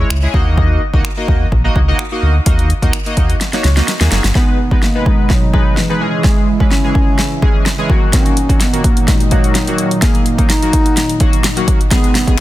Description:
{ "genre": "dance-pop", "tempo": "127 BPM", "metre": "4/4", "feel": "straight", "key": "unclear", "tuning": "A4 = 441 Hz", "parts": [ { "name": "chorused polysynth", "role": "accompaniment", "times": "0.0-12.4 s", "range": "D#3 to D#5", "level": "-20 LUFS", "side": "left 1 dB", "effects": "sidechain pumping" }, { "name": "sub bass with octave", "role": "bass", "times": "0.0-4.3 s", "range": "F#1 to D#2", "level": "-13 LUFS", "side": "equal", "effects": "sidechain pumping" }, { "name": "deep house drum kit", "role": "drums", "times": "0.1-12.4 s", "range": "finger snaps, hi-hat, kick drum, snare drum", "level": "-13 LUFS", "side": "equal", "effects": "soft clipping on snare" }, { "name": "warm analog pad", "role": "sustained chords", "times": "4.3-12.4 s", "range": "A#2 to E4", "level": "-22 LUFS", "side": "equal", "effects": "chorus, sidechain pumping" }, { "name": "dark bass clarinet", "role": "melody", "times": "4.4-12.4 s", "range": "E3 to D#4", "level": "-19 LUFS", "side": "right 1 dB", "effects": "digital delay" }, { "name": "riser", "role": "sound effects", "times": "12.2-12.4 s", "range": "none", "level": "-31 LUFS", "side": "right 3 dB", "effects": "none" } ], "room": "little or no reverb", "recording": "dense, heavily limited modern master", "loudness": "-11 LUFS", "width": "side -15 dB against mid", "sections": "0.0-4.4 A section; 4.4-12.4 B section", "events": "drum fill 3.4-4.4, 4.4-12.4; build-up 4.4-12.4", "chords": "0.3 D#m; 4.4 G#m; 6.0 C#m; 7.9 D#m" }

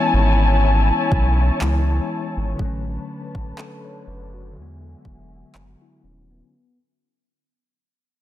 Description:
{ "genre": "contemporary R&B", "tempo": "61 BPM", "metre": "4/4", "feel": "swing 54% on 16ths", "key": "A major", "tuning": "A4 = 438 Hz", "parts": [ { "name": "bell-like tine electric piano", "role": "accompaniment", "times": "0.0-6.8 s", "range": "D3 to C#5", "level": "-28 LUFS", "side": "left 3 dB", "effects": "fast stereo tremolo, low-pass filter" }, { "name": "warm studio string section", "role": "sustained chords", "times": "0.0-6.5 s", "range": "D3 to A5", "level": "-23 LUFS", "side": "left 3 dB", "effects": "low-pass filter" }, { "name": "saturated sub bass", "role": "bass", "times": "0.1-6.4 s", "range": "D#1 to E2", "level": "-19 LUFS", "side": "equal", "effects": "none" }, { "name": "smooth R&B drum kit", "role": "drums", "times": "1.1-5.8 s", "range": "handclaps, kick drum", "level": "-26 LUFS", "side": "equal", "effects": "none" } ], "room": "little or no reverb", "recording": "dense, heavily limited modern master", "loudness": "-17 LUFS", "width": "side -13 dB against mid", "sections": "0.0-6.5 A section", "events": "fade-out 0.0-6.5; filter sweep 0.0-6.5", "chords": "0.0 Amaj7; 2.6 Bm9/A; 4.6 E9" }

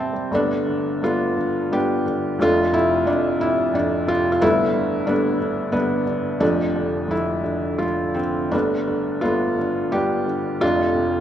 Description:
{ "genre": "classical, lyrical solo piano", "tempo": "87 BPM", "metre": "3/4", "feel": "uneven beats, rubato", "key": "unclear", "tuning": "A4 = 438 Hz", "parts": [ { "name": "felt-muted upright piano", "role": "solo", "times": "0.0-11.2 s", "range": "F1 to A5", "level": "-19 LUFS", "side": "equal", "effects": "none" } ], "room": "moderate recital hall reverb, RT60 1.6 s", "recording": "recorded in a church or concert hall", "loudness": "-19 LUFS", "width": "side -10 dB against mid", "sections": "0.3-11.2 A section", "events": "felt piano fill 0.0-0.3", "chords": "0.3 Gadd9; 2.4 F6; 4.4 Gadd9; 6.4 Dm/F; 8.5 Gadd9; 10.6 F6" }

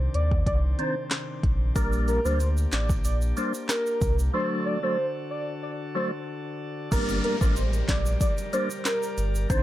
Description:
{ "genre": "dancehall", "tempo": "93 BPM", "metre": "4/4", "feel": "straight", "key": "G harmonic minor", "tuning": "A4 = 441 Hz", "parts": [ { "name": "pipe organ, sparkling flutes", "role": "sustained chords", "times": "0.0-9.6 s", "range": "C3 to D5", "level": "-36 LUFS", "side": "left 1 dB", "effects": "sidechain pumping" }, { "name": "sub bass with octave", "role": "bass", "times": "0.0-9.6 s", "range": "G1 to Eb2", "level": "-25 LUFS", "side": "equal", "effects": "none" }, { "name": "warm velvety synth lead", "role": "melody", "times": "0.1-9.6 s", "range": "Bb4 to D5", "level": "-30 LUFS", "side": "equal", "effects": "chorus, tape echo" }, { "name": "afro-pop drum kit", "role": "drums", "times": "0.1-9.6 s", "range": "crash cymbal, handclaps, hi-hat, kick drum, rim click, snare drum", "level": "-26 LUFS", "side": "equal", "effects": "vintage 12-bit sampler grit" }, { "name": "percussive tonewheel organ", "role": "accompaniment", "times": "0.8-9.6 s", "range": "Eb3 to D4", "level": "-30 LUFS", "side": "equal", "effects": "overdrive, chorus vibrato, fast rotary speaker" }, { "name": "tube shaker", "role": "percussion", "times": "1.8-9.6 s", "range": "none", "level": "-42 LUFS", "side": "right 5 dB", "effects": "none" }, { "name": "downlifter", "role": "sound effects", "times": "6.9-9.6 s", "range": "none", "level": "-36 LUFS", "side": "left 2 dB", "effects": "none" } ], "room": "little or no reverb", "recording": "none", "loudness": "-24 LUFS", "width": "side -14 dB against mid", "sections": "0.0-6.9 A section; 6.9-9.6 B section", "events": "break 4.3-6.9", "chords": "0.0 Cmadd9; 1.8 Gm; 4.3 D; 6.9 Gm" }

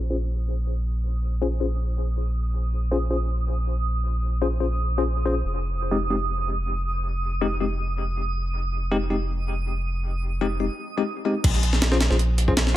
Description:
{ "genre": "drum and bass, jungle", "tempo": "160 BPM", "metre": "4/4", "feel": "swing 53% on 16ths", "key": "unclear", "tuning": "A4 = 440 Hz", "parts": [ { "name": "soft dub sub bass", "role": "bass", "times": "0.0-12.7 s", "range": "F1 to Bb1", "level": "-24 LUFS", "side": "equal", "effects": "none" }, { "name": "twinkling granular texture", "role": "texture", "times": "1.2-10.7 s", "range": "Eb6", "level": "-34 LUFS", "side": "right 5 dB", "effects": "built-in reverb" }, { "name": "bell-like tine electric piano", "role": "stabs", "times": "0.1-12.5 s", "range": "Ab3 to C5", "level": "-28 LUFS", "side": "left 4 dB", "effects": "fast stereo tremolo, dub echo" }, { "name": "jungle sampler-style drum kit", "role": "drums", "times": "11.4-12.8 s", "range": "crash cymbal, hi-hat, kick drum, snare drum", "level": "-22 LUFS", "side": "equal", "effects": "none" } ], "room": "digital ambience", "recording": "low-pass filter", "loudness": "-22 LUFS", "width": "side -14 dB against mid", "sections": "0.0-11.4 A section; 11.4-12.8 B section", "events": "filter sweep 0.0-11.4; drop 11.4-12.8", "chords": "0.0 N.C.; 5.4 F7(no3); 11.4 N.C." }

